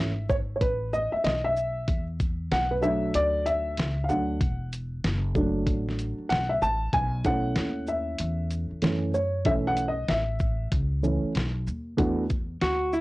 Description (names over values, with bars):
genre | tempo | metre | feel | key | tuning
hip hop, jazz-hop | 95 BPM | 4/4 | swing 62% on 16ths | unclear | A4 = 440 Hz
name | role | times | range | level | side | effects
dark upright piano | accompaniment | 0.0-12.2 s | E3 to A5 | -26 LUFS | equal | cassette tape
upright bass | bass | 0.0-13.0 s | E1 to F#2 | -30 LUFS | equal | tube saturation
dusty soul sampler-style drum kit | drums | 0.3-13.0 s | hi-hat, kick drum, shaker, snare drum | -28 LUFS | equal | cassette tape
hollow-body jazz guitar | melody | 12.6-13.0 s | E4 to F#4 | -24 LUFS | equal | cassette tape
room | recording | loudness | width
light reverb | home recording on cassette | -24 LUFS | side -20 dB against mid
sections
0.0-12.0 A section; 12.0-13.0 B section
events
upright piano solo 0.0-12.0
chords
0.0 B9sus4; 1.9 E9sus4; 6.9 B9sus4; 12.0 E9sus4